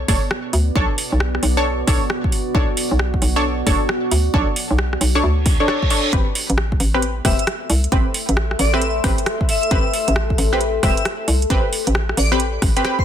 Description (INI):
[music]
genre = UK garage, two-step garage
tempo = 134 BPM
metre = 4/4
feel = swing 64% on 16ths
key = A dorian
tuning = A4 = 440 Hz
[part]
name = hollow knocking FM bass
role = bass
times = 0.0-12.7 s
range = E1 to D2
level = -19 LUFS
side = equal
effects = none
[part]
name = deep dark ambient pad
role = texture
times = 0.0-13.0 s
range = B3 to C6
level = -26 LUFS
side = equal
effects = chorus, built-in reverb, sidechain pumping
[part]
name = punchy chord stab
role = stabs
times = 0.1-13.0 s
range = C4 to C#5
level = -22 LUFS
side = equal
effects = chorus, tape echo
[part]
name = electronic kick drum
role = drums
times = 0.1-13.0 s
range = none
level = -19 LUFS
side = equal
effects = small room reverb
[part]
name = house drum kit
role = drums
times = 0.1-13.0 s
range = hi-hat, rim click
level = -24 LUFS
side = right 1 dB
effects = soft clipping on snare, small room reverb
[part]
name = reverse cymbal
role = sound effects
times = 5.4-6.1 s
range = none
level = -25 LUFS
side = right 6 dB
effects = none
[part]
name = airy dreamy lead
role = melody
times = 7.2-13.0 s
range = C5 to E5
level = -25 LUFS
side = left 3 dB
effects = chorus, phaser, tape echo
[sound]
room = light reverb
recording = dense, heavily limited modern master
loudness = -16 LUFS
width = side -9 dB against mid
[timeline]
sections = 0.0-13.0 A section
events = reverse cymbal 5.4-6.1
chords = 0.0 Bm9; 6.1 Am9